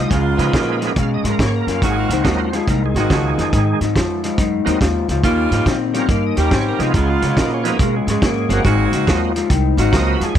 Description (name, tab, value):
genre	electric blues shuffle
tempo	141 BPM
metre	4/4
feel	swing 66% on 8ths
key	Ab mixolydian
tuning	A4 = 440 Hz
part	bright tonewheel organ	accompaniment	0.0-10.4 s	Eb3 to Gb5	-23 LUFS	right 5 dB	slow rotary speaker, overdrive, chorus vibrato
part	electric guitar through a small old amp	riff	0.0-10.4 s	Ab2 to C4	-20 LUFS	left 5 dB	wide subtle chorus
part	upright bass	bass	0.0-10.4 s	G1 to Db3	-20 LUFS	right 1 dB	none
part	edgy saxophone section	stabs	0.1-10.3 s	G3 to G4	-22 LUFS	right 4 dB	none
part	warm soul drum kit	drums	0.1-10.4 s	hi-hat, kick drum, snare drum	-20 LUFS	right 1 dB	none
room	light reverb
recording	none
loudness	-15 LUFS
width	side -10 dB against mid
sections	0.0-10.4 A section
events	none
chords	0.1 Db9; 1.8 Ab9; 5.2 Eb9; 6.9 Db9; 8.6 Ab9